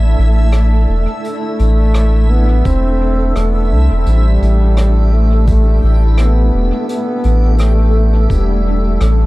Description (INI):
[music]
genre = ambient dub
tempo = 85 BPM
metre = 4/4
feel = swing 58% on 16ths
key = unclear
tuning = A4 = 440 Hz
[part]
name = granular cloud pad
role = sustained chords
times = 0.0-9.3 s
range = A3 to D5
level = -22 LUFS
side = equal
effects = built-in reverb
[part]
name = soft dub sub bass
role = bass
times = 0.0-9.3 s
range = E1 to C2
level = -11 LUFS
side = equal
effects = none
[part]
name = backwards swelling texture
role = texture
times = 0.0-9.3 s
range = E4 to E5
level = -27 LUFS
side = equal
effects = built-in reverb
[part]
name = vintage brush drum kit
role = drums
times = 0.5-9.2 s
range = hi-hat, rim click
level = -29 LUFS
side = equal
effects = dub echo
[part]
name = dark trombone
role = melody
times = 1.2-9.3 s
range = G3 to C4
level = -20 LUFS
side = equal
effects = dub echo
[part]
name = electronic kick drum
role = drums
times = 2.7-8.5 s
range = none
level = -17 LUFS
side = equal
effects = none
[sound]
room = small room ambience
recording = dark, warm production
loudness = -10 LUFS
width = side -19 dB against mid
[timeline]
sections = 0.0-9.3 A section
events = none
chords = 0.0 A7sus4